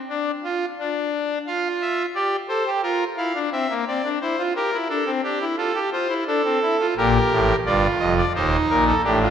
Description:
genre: classical, baroque-style 4-part fugue for pipe organ.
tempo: 87 BPM.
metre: 4/4.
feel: straight.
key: Bb major.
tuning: A4 = 441 Hz.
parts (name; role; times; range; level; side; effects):
pipe organ, trumpet; solo; 0.1-9.3 s; Eb1 to F5; -19 LUFS; equal; none.
room: wet scoring stage reverb, RT60 2.0 s.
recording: none.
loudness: -19 LUFS.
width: side -8 dB against mid.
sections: 0.0-9.3 A section.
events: none.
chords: 0.0 N.C.; 1.5 F5; 2.8 Bbadd9; 4.2 C7/E; 5.6 F; 7.0 Bb; 8.3 Cm7/Eb.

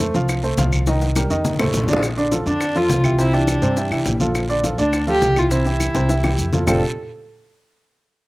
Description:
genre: Afro-Cuban jazz.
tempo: 207 BPM.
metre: 4/4.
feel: straight.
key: F major.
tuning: A4 = 440 Hz.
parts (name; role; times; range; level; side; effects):
warm upright piano; accompaniment; 0.0-6.8 s; C3 to F5; -21 LUFS; right 1 dB; none.
upright bass; bass; 0.0-6.8 s; F1 to G2; -21 LUFS; equal; none.
bongos; percussion; 0.0-6.7 s; none; -28 LUFS; left 3 dB; none.
maracas; percussion; 0.0-6.7 s; none; -33 LUFS; left 2 dB; none.
congas; percussion; 0.1-6.7 s; none; -26 LUFS; left 1 dB; none.
guiro; percussion; 0.1-6.7 s; none; -34 LUFS; right 3 dB; none.
claves; percussion; 0.3-6.7 s; none; -29 LUFS; left 2 dB; none.
warm viola; melody; 2.5-6.8 s; D4 to A4; -22 LUFS; equal; none.
room: little or no reverb.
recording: recorded outdoors, with no room sound.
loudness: -16 LUFS.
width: side -20 dB against mid.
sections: 0.0-2.0 A section; 2.0-6.7 B section; 6.7-7.8 C section.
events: drum fill 0.9-2.0, 5.9-6.7.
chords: 0.0 F; 0.9 Cm7; 1.4 F7; 2.0 Bbmaj7; 3.2 C9; 4.3 Bbmaj7; 5.5 C; 6.7 F69.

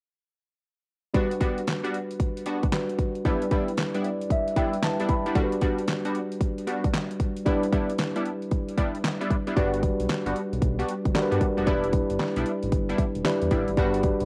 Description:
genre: R&B, new jack swing.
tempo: 114 BPM.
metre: 4/4.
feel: swing 64% on 16ths.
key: G major.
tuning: A4 = 441 Hz.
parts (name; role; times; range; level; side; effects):
tine electric piano; accompaniment; 1.1-14.3 s; F#3 to B5; -30 LUFS; equal; cassette tape.
funky polysynth comp; stabs; 1.1-14.0 s; G3 to F#4; -33 LUFS; equal; chorus, cassette tape.
pop drum kit; drums; 1.1-14.3 s; handclaps, hi-hat, kick drum, snare drum; -29 LUFS; equal; cassette tape.
round analog bass; bass; 9.6-14.3 s; E1 to G2; -33 LUFS; equal; none.
room: little or no reverb.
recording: home recording on cassette.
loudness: -26 LUFS.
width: mono.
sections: 1.1-9.6 A section; 9.6-14.3 B section.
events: tine electric piano fill 3.8-5.4.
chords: 1.1 Gmaj7; 3.3 Em7; 5.4 Gmaj7; 7.5 Em7; 9.6 Gmaj7; 11.7 Em7.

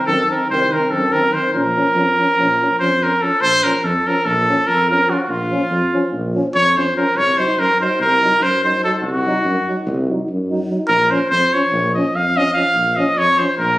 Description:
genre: balkan folk, Balkan brass band.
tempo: 289 BPM (eighths).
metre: 9/8.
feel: straight.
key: Bb harmonic minor.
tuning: A4 = 442 Hz.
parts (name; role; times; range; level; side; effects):
warm trumpet; melody; 0.0-13.8 s; F4 to F5; -15 LUFS; equal; none.
dark euphonium; accompaniment; 0.1-13.5 s; Eb3 to Gb3; -25 LUFS; right 2 dB; none.
warm euphonium; accompaniment; 0.1-13.5 s; C4 to Eb4; -23 LUFS; left 1 dB; none.
mellow tuba; bass; 0.1-13.8 s; Bb1 to Gb2; -23 LUFS; equal; none.
room: moderate studio reverb, RT60 0.5 s.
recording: recorded on a phone in the room, studio reverb, compression.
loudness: -14 LUFS.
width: side -16 dB against mid.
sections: 0.0-3.4 A section; 3.4-13.8 A section.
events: none.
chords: 0.0 Cdim; 1.5 Bbm; 7.1 Cdim; 10.9 Bbm.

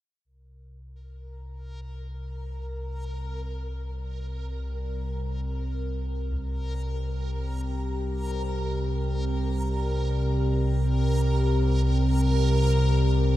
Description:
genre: dark ambient drone.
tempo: free time.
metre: none.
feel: none.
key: unclear.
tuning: A4 = 440 Hz.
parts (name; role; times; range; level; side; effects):
deep rumbling drone; drone; 0.6-13.4 s; C2 to C3; -26 LUFS; equal; built-in reverb.
sweeping resonant pad; sustained chords; 0.3-13.4 s; C3 to G4; -31 LUFS; equal; chorus, phaser.
backwards swelling texture; texture; 1.2-13.4 s; Bb4; -35 LUFS; right 1 dB; built-in reverb.
taiko ensemble; percussion; 6.3-6.5 s; none; -38 LUFS; equal; none.
room: moderate huge ambient reverb, RT60 8.0 s.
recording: cassette tape.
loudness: -24 LUFS.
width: side -14 dB against mid.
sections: 0.3-13.4 A section.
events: fade-in on analog synth pad 0.3-13.4; fade-in on synth texture 0.3-13.4.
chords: 0.3 C5.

